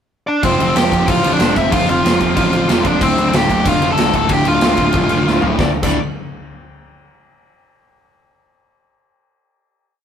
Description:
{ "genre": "punk rock", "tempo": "186 BPM", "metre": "4/4", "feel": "straight", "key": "D minor", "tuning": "A4 = 440 Hz", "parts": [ { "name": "dark smooth lead guitar", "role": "melody", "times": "0.3-6.0 s", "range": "C4 to A5", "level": "-17 LUFS", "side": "equal", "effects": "overdrive" }, { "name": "overdriven electric guitar", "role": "riff", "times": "0.4-6.0 s", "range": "D2 to F3", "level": "-21 LUFS", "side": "left 5 dB", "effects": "none" }, { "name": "sludgy distorted guitar", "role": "riff", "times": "0.4-6.0 s", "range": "D2 to F3", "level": "-20 LUFS", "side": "right 6 dB", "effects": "overdrive" }, { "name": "overdriven picked electric bass", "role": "bass", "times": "0.4-6.0 s", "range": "D1 to A1", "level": "-22 LUFS", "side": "equal", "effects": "none" }, { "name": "big rock drum kit", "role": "drums", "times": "0.4-5.9 s", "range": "crash cymbal, kick drum, snare drum, toms", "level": "-18 LUFS", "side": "equal", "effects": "none" } ], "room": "light reverb", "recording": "rough rehearsal-room recording", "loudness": "-12 LUFS", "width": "side -8 dB against mid", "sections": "0.0-0.4 pickup bar; 0.4-5.6 chorus; 5.6-6.9 final chord", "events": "drum fill 5.3-5.6", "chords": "0.4 F; 3.0 Dm; 5.6 D5" }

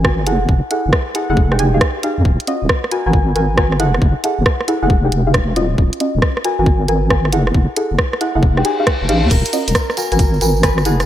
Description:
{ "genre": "UK garage, two-step garage", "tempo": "136 BPM", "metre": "4/4", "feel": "swing 67% on 16ths", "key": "unclear", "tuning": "A4 = 435 Hz", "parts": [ { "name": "deep mellow chord stab", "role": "stabs", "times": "0.0-11.0 s", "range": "Db4 to Ab5", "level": "-19 LUFS", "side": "equal", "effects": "chorus, digital delay" }, { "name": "deep soft wobble bass", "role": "bass", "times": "0.0-11.1 s", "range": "Eb1 to F2", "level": "-16 LUFS", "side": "equal", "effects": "chorus, tube saturation" }, { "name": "electronic kick drum", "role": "drums", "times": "0.0-10.8 s", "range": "none", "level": "-16 LUFS", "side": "equal", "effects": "overdrive" }, { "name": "garage drum kit", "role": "drums", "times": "0.0-11.1 s", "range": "crash cymbal, hi-hat, rim click", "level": "-20 LUFS", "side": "right 1 dB", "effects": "overdrive" }, { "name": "reverse cymbal", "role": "sound effects", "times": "8.6-9.3 s", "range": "none", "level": "-27 LUFS", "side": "left 2 dB", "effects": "none" }, { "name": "concert harp", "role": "melody", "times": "9.3-11.1 s", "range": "Ab4 to Cb5", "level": "-25 LUFS", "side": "right 1 dB", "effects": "none" }, { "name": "tambourine", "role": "percussion", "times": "9.3-11.1 s", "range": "none", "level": "-27 LUFS", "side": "right 4 dB", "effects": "none" } ], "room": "light reverb, digital ambience", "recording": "bright 1980s-style digital production", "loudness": "-13 LUFS", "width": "side -12 dB against mid", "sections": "0.0-11.1 A section", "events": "reverse cymbal 8.6-9.3", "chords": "0.3 Gbm9; 1.4 Fm9; 2.3 Ebm9; 2.9 Abm9; 3.8 Gbm9; 4.9 Fm9; 5.8 Ebm9; 6.4 Abm9; 7.3 Gbm9; 8.4 Fm9; 9.3 Ebm9; 10.0 Abm9" }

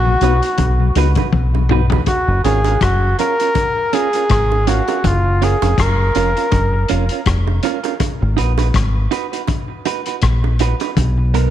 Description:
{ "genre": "roots reggae", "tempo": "81 BPM", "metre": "4/4", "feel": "swing 56% on 16ths", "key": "F# major", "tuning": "A4 = 440 Hz", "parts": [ { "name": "warm flugelhorn", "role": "melody", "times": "0.0-7.3 s", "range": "E#4 to A#4", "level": "-18 LUFS", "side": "equal", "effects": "dub echo" }, { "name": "deep dub fingered electric bass", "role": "bass", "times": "0.0-11.5 s", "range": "E#1 to C#2", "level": "-15 LUFS", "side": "equal", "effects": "none" }, { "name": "mellow tonewheel organ", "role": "accompaniment", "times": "0.1-2.0 s", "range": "B2 to F#4", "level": "-24 LUFS", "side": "left 11 dB", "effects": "slow rotary speaker" }, { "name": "clean electric guitar", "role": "accompaniment", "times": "0.2-11.5 s", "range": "B3 to B4", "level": "-23 LUFS", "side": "right 13 dB", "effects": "dub echo" }, { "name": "vintage drum kit", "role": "drums", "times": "0.2-11.5 s", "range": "hi-hat, kick drum, rim click, toms", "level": "-22 LUFS", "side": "left 4 dB", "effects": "none" }, { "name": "bongos", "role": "percussion", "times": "0.2-11.2 s", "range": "none", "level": "-27 LUFS", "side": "right 13 dB", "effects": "none" } ], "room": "light reverb, studio reverb", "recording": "1960s-style stereo with parts hard left and right", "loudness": "-14 LUFS", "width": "side -11 dB against mid", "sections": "0.0-2.1 A section; 2.1-11.5 B section", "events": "drum fill 1.3-2.1", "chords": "0.0 B; 2.1 F#maj7; 8.0 G#m7; 11.0 Bmaj7" }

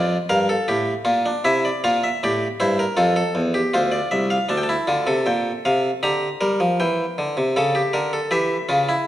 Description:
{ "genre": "classical, baroque-style 3-part fugue for harpsichord", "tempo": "78 BPM", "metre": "4/4", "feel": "straight", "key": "D minor from 4.5 s", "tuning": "A4 = 443 Hz", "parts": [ { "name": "harpsichord", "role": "solo", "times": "0.0-9.1 s", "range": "C2 to Bb5", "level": "-18 LUFS", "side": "equal", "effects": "none" } ], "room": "moderate recital hall reverb, RT60 1.5 s", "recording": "none", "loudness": "-18 LUFS", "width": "side -13 dB against mid", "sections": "0.0-4.5 A section; 4.5-9.1 B section", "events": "none", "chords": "0.0 Bb/F; 1.4 C7; 3.0 F; 4.5 Dm; 6.0 Gm/D; 7.6 A7/C#" }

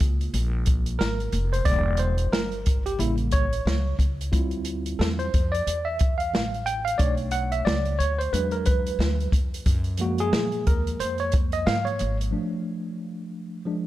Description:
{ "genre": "hip hop, jazz-hop", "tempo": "90 BPM", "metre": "4/4", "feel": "swing 59% on 16ths", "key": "unclear", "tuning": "A4 = 441 Hz", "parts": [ { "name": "tine electric piano", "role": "accompaniment", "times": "0.0-13.9 s", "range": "C#3 to G5", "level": "-27 LUFS", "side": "right 1 dB", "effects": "overdrive, fast stereo tremolo" }, { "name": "upright bass", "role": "bass", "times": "0.0-12.3 s", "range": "E1 to A#2", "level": "-27 LUFS", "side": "equal", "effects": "none" }, { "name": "open jazz drum kit", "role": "drums", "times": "0.0-12.3 s", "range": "hi-hat, kick drum, snare drum", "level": "-24 LUFS", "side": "equal", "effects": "none" } ], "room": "small room ambience", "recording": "none", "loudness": "-22 LUFS", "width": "side -15 dB against mid", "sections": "0.0-13.9 A section", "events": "tine electric piano solo 0.0-13.9; break 12.3-13.9", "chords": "0.0 F#maj9 (rootless); 1.7 Em7b5; 3.0 A7b9; 4.3 Dm11; 7.0 Bm7; 8.3 E9; 9.7 F#maj7; 12.3 F6" }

